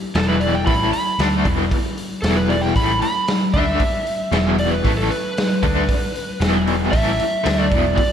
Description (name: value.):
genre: blues rock power trio and southern rock.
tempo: 115 BPM.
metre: 4/4.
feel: straight.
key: unclear.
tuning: A4 = 440 Hz.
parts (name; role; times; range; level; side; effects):
raw garage drum kit; drums; 0.1-8.1 s; hi-hat, kick drum, snare drum; -20 LUFS; equal; none.
overdriven slide guitar; melody; 0.2-8.1 s; A4 to B5; -23 LUFS; right 2 dB; none.
cranked stack guitar; riff; 0.2-8.0 s; E2 to D4; -22 LUFS; left 2 dB; overdrive, tremolo, slapback echo.
vintage muted picked electric bass; bass; 0.2-8.0 s; E1 to D2; -23 LUFS; right 1 dB; none.
room: moderate lush hall reverb, RT60 1.8 s, studio reverb.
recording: big arena sound.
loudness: -16 LUFS.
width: side -8 dB against mid.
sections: 0.0-8.1 A section.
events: electric slide guitar solo 0.0-8.1.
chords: 0.0 E5.